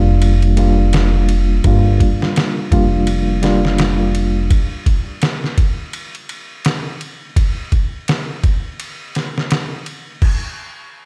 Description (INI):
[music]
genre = trip hop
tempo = 84 BPM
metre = 4/4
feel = swing 59% on 16ths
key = G minor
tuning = A4 = 440 Hz
[part]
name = mellow reed electric piano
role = accompaniment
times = 0.0-4.5 s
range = G3 to F4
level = -21 LUFS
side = equal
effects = fast tremolo, low-pass filter, tape echo
[part]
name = upright bass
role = bass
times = 0.0-4.5 s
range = F1 to G1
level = -17 LUFS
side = equal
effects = none
[part]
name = trip hop sampler-style drum kit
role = drums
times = 0.2-10.4 s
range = crash cymbal, kick drum, ride cymbal, snare drum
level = -20 LUFS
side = equal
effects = none
[sound]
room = digital ambience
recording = dark, warm production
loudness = -16 LUFS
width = mono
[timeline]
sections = 0.0-10.2 A section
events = none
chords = 0.0 Gm7; 4.5 N.C.